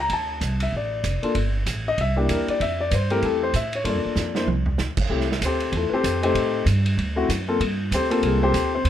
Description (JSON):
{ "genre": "jazz piano trio", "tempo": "192 BPM", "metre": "4/4", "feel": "swing 60% on 8ths", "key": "F major", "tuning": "A4 = 440 Hz", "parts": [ { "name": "warm grand piano", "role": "melody", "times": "0.0-8.9 s", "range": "Ab3 to Bb5", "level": "-23 LUFS", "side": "left 3 dB", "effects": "plate reverb" }, { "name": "upright bass", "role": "bass", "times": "0.0-8.9 s", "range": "F1 to A2", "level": "-24 LUFS", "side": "right 1 dB", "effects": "none" }, { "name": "vintage drum kit", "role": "drums", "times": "0.1-8.9 s", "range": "crash cymbal, hi-hat, kick drum, ride cymbal, snare drum, toms", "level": "-28 LUFS", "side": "right 3 dB", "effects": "none" } ], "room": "light reverb", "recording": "none", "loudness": "-20 LUFS", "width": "side -10 dB against mid", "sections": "0.0-5.1 A section; 5.1-8.9 B section", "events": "drum fill 4.2-4.8; grand piano solo 5.1-8.9", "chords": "0.1 Dm7; 1.3 Gsus2; 2.0 C7; 2.6 Fmaj9; 3.9 Gm7; 4.5 Csus2; 5.1 Fmaj9; 6.3 Am7b5; 7.0 D7; 7.6 Gm11" }